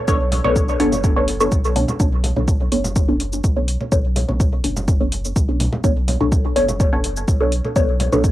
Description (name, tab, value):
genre	dub techno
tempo	125 BPM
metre	4/4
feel	straight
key	B minor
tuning	A4 = 440 Hz
part	filtered dub chord stab	stabs	0.1-8.3 s	B3 to C#5	-20 LUFS	equal	phaser, sidechain pumping, cassette tape, dub echo
part	warm sub bass	bass	0.1-8.3 s	F#1 to B1	-24 LUFS	equal	tube saturation, sidechain pumping
part	electronic cabasa and hi-hat	drums	0.1-8.3 s	none	-29 LUFS	equal	overdrive, cassette tape
part	electronic kick drum	drums	0.1-8.3 s	none	-18 LUFS	equal	overdrive, cassette tape
part	congas	percussion	0.3-8.2 s	none	-27 LUFS	right 1 dB	sidechain pumping on perc, cassette tape, dub echo
room	little or no reverb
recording	home recording on cassette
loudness	-16 LUFS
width	side -15 dB against mid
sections	0.0-8.3 A section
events	none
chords	0.0 Bm9